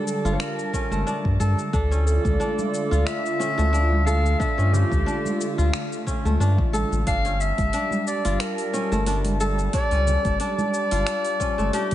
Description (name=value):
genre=organic downtempo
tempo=90 BPM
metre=4/4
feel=swing 55% on 16ths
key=unclear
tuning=A4 = 435 Hz
part: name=warm clarinet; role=melody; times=0.0-11.9 s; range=G4 to F5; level=-27 LUFS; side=equal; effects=ping-pong delay, shimmer reverb
part: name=warm analog pad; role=sustained chords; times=0.0-11.9 s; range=D3 to A5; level=-30 LUFS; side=equal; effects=chorus, sidechain pumping, shimmer reverb
part: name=kora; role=arpeggios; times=0.0-11.9 s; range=A3 to A4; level=-29 LUFS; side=equal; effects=ping-pong delay, shimmer reverb
part: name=afro-pop drum kit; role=drums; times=0.1-11.9 s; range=cabasa, finger snaps, hi-hat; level=-34 LUFS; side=left 2 dB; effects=studio reverb
part: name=round analog bass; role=bass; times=0.2-11.9 s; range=G1 to G2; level=-22 LUFS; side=equal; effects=sidechain pumping
part: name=congas and bongos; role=percussion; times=0.3-11.7 s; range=none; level=-32 LUFS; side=right 2 dB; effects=none
part: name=electronic kick drum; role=drums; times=0.7-11.9 s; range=none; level=-27 LUFS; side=equal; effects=studio reverb
room=light reverb, studio ambience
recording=nothing above 10.4 kHz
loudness=-20 LUFS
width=side -13 dB against mid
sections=0.0-11.9 A section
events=none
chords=0.0 Gm7; 1.7 Dmadd9; 7.1 Gm7